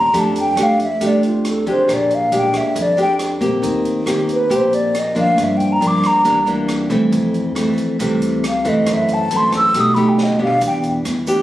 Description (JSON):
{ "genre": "bossa nova", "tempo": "137 BPM", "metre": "4/4", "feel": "straight", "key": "unclear", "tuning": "A4 = 439 Hz", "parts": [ { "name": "breathy mellow silver concert flute", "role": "melody", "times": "0.0-10.8 s", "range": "F4 to E6", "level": "-16 LUFS", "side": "equal", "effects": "none" }, { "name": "nylon-string guitar", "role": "accompaniment", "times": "0.0-11.4 s", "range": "F2 to G4", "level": "-17 LUFS", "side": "equal", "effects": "none" }, { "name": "upright bass", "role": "bass", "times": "0.0-11.3 s", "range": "Bb1 to G2", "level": "-25 LUFS", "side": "right 1 dB", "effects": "none" }, { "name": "open jazz drum kit", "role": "drums", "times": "0.1-11.4 s", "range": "hi-hat, kick drum, rim click, snare drum, toms", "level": "-29 LUFS", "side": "right 2 dB", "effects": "none" }, { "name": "egg shaker", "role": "percussion", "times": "10.6-11.4 s", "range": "none", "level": "-35 LUFS", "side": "right 1 dB", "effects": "none" } ], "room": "light reverb", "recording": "recorded on a phone in the room, studio reverb", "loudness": "-14 LUFS", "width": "side -14 dB against mid", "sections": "0.0-11.4 A section", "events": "flute solo 0.0-11.4; drum fill 10.2-10.6", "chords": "0.1 F69; 1.9 Bb13; 3.6 Eb6; 5.4 Gm7; 6.2 C9; 7.1 Fmaj7; 8.9 F#m7b5; 9.7 B7alt; 10.6 Em7" }